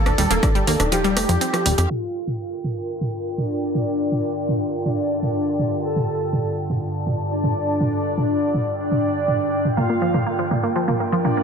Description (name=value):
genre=melodic techno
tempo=122 BPM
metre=4/4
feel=straight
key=G minor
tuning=A4 = 440 Hz
part: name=soft supersaw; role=melody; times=0.0-11.4 s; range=D4 to A4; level=-25 LUFS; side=left 1 dB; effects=sidechain pumping, ping-pong delay
part: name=wide unison pluck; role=arpeggios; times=0.0-1.8, 9.8-11.4 s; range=F3 to G4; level=-22 LUFS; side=equal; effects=sidechain pumping, ping-pong delay
part: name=airy breathy pad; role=texture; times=0.0-11.4 s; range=Eb4 to A5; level=-28 LUFS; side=right 1 dB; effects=chorus, sidechain pumping
part: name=plucky analog bass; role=bass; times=0.1-1.9 s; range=Eb1 to F2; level=-22 LUFS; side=equal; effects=sidechain pumping
part: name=punchy analog drum machine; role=drums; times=0.1-11.3 s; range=crash cymbal, hi-hat, rim click, toms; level=-25 LUFS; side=right 1 dB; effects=overdrive, sidechain pumping on hats, low-pass filter on hats, low-pass filter on snare, sidechain pumping on toms, low-pass filter on toms, sidechain pumping on cymbals, low-pass filter on cymbals
part: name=electronic kick drum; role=drums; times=0.4-0.5 s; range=none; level=-20 LUFS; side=equal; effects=none
part: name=warm symphonic violin section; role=second line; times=1.9-11.4 s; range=D5 to A5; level=-29 LUFS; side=equal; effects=sidechain pumping, ping-pong delay
part: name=overtone-sweeping drone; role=drone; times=2.8-11.4 s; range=G2 to D3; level=-30 LUFS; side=equal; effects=chorus, built-in reverb, sidechain pumping
room=moderate digital room reverb, RT60 0.8 s, digital ambience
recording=low-pass filter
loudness=-19 LUFS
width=side -6 dB against mid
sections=0.0-1.9 A section; 1.9-11.4 B section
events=kick drops out 0.9-1.9; filter sweep 1.9-11.4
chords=0.0 Ebmaj7; 0.9 Fadd9; 1.9 Gm7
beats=0.43 0.92 1.41 | 1.90 2.40 2.89 3.38 | 3.87 4.36 4.85 5.35 | 5.84 6.33 6.82 7.31 | 7.80 8.30 8.79 9.28 | 9.77 10.26 10.76 11.25